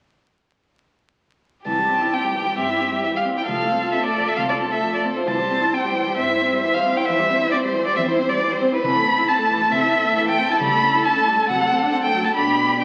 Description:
quick classical-period movement for string quartet; 134 BPM; 4/4; rubato; C major; A4 = 440 Hz
rich violin; melody; 1.7-12.8 s; B4 to B5; -22 LUFS; equal
warm violin; second line; 1.7-12.8 s; G4 to C5; -28 LUFS; equal
warm viola; accompaniment; 1.7-12.8 s; E3 to F4; -27 LUFS; equal
warm cello; bass; 1.7-12.8 s; C2 to C#3; -35 LUFS; equal
wet recital hall reverb, RT60 1.8 s; very old 78 rpm record, vinyl crackle; -20 LUFS; mono
1.7-12.8 A section
1.7 C; 3.5 F/C; 5.3 C; 7.1 C/E; 8.8 Am/C; 10.6 A7/C#; 11.5 D7/C
| 1.66 2.12 2.58 3.03 | 3.48 3.94 4.38 4.83 | 5.28 5.73 6.18 6.63 | 7.08 7.53 7.97 8.40 | 8.84 9.28 9.72 10.16 | 10.61 11.05 11.49 11.93 | 12.37 12.82

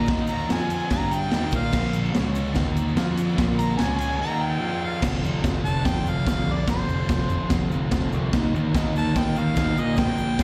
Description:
garage rock duo or trio; 146 BPM; 4/4; straight; F mixolydian; A4 = 439 Hz
clear harmonica; melody; 0.0-10.4 s; C5 to Bb5; -32 LUFS; equal; overdrive, slapback echo
combo organ; sustained chords; 0.0-10.4 s; Db4 to Bb5; -41 LUFS; equal
thick fuzz guitar; riff; 0.0-10.4 s; F2 to Bb4; -30 LUFS; equal; distortion, slapback echo
growling picked electric bass; bass; 0.0-10.4 s; F1 to Bb2; -30 LUFS; equal; overdrive, tube saturation
raw garage drum kit; drums; 0.1-10.4 s; crash cymbal, kick drum, ride cymbal, snare drum; -27 LUFS; equal
tube shaker; percussion; 0.1-10.4 s; -52 LUFS; equal
studio reverb; live gig heard through the venue's PA, recital hall reverb; -24 LUFS; mono
0.0-5.0 A section; 5.0-10.4 B section
harmonica solo 0.0-5.0; break 4.2-5.0; transistor combo organ fill 7.5-8.3
0.5 F5; 0.9 G5; 1.3 Eb5; 1.7 Bb5; 2.1 Db5; 2.6 Eb5; 3.0 F5; 3.4 Bb5; 3.8 Db5; 4.2 Eb5; 4.6 F5; 5.0 F; 8.3 Eb
| 0.08 0.50 0.91 1.32 | 1.74 2.15 2.56 2.97 | 3.39 3.80 4.21 4.62 | 5.03 5.45 5.86 6.27 | 6.68 7.09 7.51 7.92 | 8.33 8.74 9.15 9.57 | 9.98 10.39

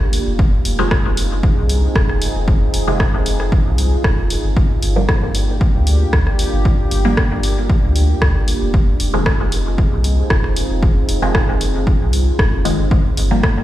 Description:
dub techno; 115 BPM; 4/4; straight; A4 = 441 Hz
deep dark ambient pad; sustained chords; 0.0-13.6 s; Bb3 to Ab4; -24 LUFS; right 1 dB; chorus, built-in reverb, sidechain pumping
filtered dub chord stab; stabs; 0.0-13.5 s; C3 to Bb3; -22 LUFS; equal; phaser, sidechain pumping, dub echo
warm sub bass; bass; 0.0-13.6 s; F1 to D2; -18 LUFS; equal; sidechain pumping
punchy analog drum machine; drums; 0.1-13.5 s; hi-hat, rim click; -24 LUFS; equal; dub echo
electronic kick drum; drums; 0.4-13.5 s; -15 LUFS; equal
little or no reverb; played on a big sound system in a bare room, stone room reverb; -14 LUFS; side -14 dB against mid
0.0-13.6 A section
0.4 Fm7; 4.6 Gm7; 8.7 Fm7; 12.9 Gm7
| 0.39 0.91 1.43 1.96 | 2.48 3.00 3.52 4.04 | 4.56 5.09 5.61 6.13 | 6.65 7.17 7.70 8.22 | 8.74 9.26 9.78 10.30 | 10.82 11.35 11.87 12.39 | 12.91 13.43

